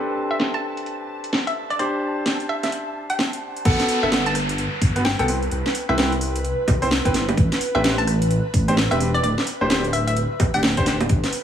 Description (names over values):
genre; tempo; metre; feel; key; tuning
UK garage, two-step garage; 129 BPM; 4/4; swing 62% on 16ths; unclear; A4 = 441 Hz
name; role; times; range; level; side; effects
ethereal airy pad; sustained chords; 0.0-11.4 s; A4 to A5; -31 LUFS; right 1 dB; ensemble chorus, built-in reverb, sidechain pumping
clear concert grand piano; stabs; 0.0-10.9 s; B3 to D5; -25 LUFS; equal; dub echo
hollow square pluck; melody; 0.3-11.0 s; D5 to A5; -27 LUFS; left 1 dB; chorus, dub echo
house drum kit; drums; 0.4-11.4 s; bongos, crash cymbal, hi-hat, rim click, snare drum; -24 LUFS; equal; none
dark detuned saw bass; bass; 3.7-11.2 s; D1 to C2; -23 LUFS; equal; sidechain pumping
electronic kick drum; drums; 3.7-11.2 s; none; -20 LUFS; equal; none
downlifter; sound effects; 3.7-7.4 s; none; -30 LUFS; equal; none
room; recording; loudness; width
light reverb; low-pass filter; -19 LUFS; side -9 dB against mid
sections
0.0-3.7 A section; 3.7-11.4 B section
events
filter sweep on grand piano 0.0-3.7; drop 3.7-11.4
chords
0.0 Am11; 1.8 D7sus4; 3.7 Gmaj9; 5.3 Cmaj7; 7.4 Am11; 9.2 D7sus4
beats
0.40 0.86 1.33 | 1.79 2.26 2.72 3.19 | 3.65 4.12 4.58 5.05 | 5.51 5.98 6.44 6.91 | 7.37 7.84 8.30 8.77 | 9.23 9.70 10.16 10.63 | 11.10